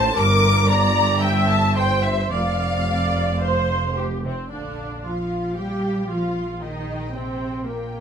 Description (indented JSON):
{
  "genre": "quick classical-period movement for string orchestra",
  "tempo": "112 BPM",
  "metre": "4/4",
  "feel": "uneven beats",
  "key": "Bb major",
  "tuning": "A4 = 440 Hz",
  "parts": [
    { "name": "rich symphonic violin section", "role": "melody", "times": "0.0-8.0 s", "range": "E5 to D6", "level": "-26 LUFS", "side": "left 3 dB", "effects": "none" },
    { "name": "warm symphonic violin section", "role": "second line", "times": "0.0-8.0 s", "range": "Bb4 to D6", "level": "-28 LUFS", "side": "left 3 dB", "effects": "none" },
    { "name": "rich symphonic viola section", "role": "accompaniment", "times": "0.0-8.0 s", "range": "Bb3 to E5", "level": "-25 LUFS", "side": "right 2 dB", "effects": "none" },
    { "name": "rich symphonic cello section", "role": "bass", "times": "0.0-8.0 s", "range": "F2 to G3", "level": "-26 LUFS", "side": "right 1 dB", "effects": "none" },
    { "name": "rich symphonic double bass section", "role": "bass", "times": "0.0-8.0 s", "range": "F1 to Bb1", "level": "-24 LUFS", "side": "right 2 dB", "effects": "none" }
  ],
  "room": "light reverb",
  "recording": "close, detailed microphones",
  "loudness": "-19 LUFS",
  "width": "side -7 dB against mid",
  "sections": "0.0-4.5 A section; 4.5-8.0 B section",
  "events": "none",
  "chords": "0.2 Gm; 2.3 Dm/F; 3.4 F5; 4.5 Bb; 6.6 Eb/Bb"
}